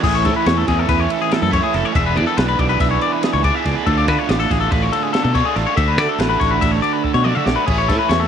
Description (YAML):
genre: math rock and midwest emo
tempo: 282 BPM (eighths)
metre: 9/8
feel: straight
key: A major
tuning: A4 = 442 Hz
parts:
  - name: twelve-string electric guitar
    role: accompaniment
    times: 0.0-1.9 s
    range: E3 to A3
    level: -26 LUFS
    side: right 8 dB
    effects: analog chorus, cassette tape
  - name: twangy electric guitar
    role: arpeggios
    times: 0.0-8.3 s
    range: G#4 to E5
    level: -19 LUFS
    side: left 10 dB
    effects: cassette tape
  - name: overdriven electric guitar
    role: riff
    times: 0.0-8.3 s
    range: A2 to G#4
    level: -21 LUFS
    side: right 12 dB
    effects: cassette tape
  - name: modern bright fingered electric bass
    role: bass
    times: 0.0-8.3 s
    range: E1 to D3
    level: -19 LUFS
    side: equal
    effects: none
  - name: compact cocktail drum kit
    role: drums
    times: 0.0-8.2 s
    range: crash cymbal, kick drum, ride cymbal, snare drum, toms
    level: -22 LUFS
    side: equal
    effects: cassette tape
room: light reverb, studio reverb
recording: home recording on cassette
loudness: -15 LUFS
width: side -8 dB against mid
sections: 0.0-8.3 A section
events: drum fill 7.0-7.7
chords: 0.0 Amaj7; 1.9 E7; 3.9 Dm6; 5.8 Dmaj9; 7.7 Amaj7